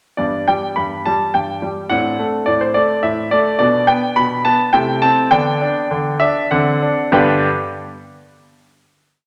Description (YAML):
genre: classical-period piano sonatina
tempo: 94-107 BPM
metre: 3/4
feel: rubato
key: G major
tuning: A4 = 439 Hz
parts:
  - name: clear grand piano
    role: solo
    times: 0.2-7.5 s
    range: G2 to B5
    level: -16 LUFS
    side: equal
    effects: none
room: wet recital hall reverb, RT60 1.6 s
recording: none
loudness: -16 LUFS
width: mono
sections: 0.2-7.1 A section; 7.1-9.0 final chord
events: none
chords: 0.2 G; 1.9 D7/A; 3.6 Bm7; 4.7 Am/C; 5.3 G/D; 6.5 D7; 7.1 G